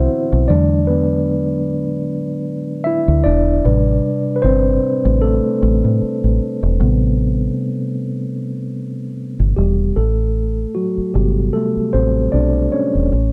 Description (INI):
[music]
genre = R&B, neo-soul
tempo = 76 BPM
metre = 4/4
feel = swing 56% on 16ths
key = A dorian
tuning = A4 = 441 Hz
[part]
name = mellow tine electric piano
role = accompaniment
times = 0.0-13.3 s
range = C3 to F#5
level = -20 LUFS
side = equal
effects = none
[part]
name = deep dub fingered electric bass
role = bass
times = 0.0-13.3 s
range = E1 to A2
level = -19 LUFS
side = equal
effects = none
[sound]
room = little or no reverb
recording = dry, close 1970s-style studio recording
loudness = -17 LUFS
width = mono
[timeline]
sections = 0.0-10.0 A section; 10.0-13.3 B section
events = tine electric piano solo 0.0-10.0, 10.0-13.3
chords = 0.5 E7; 3.6 Am7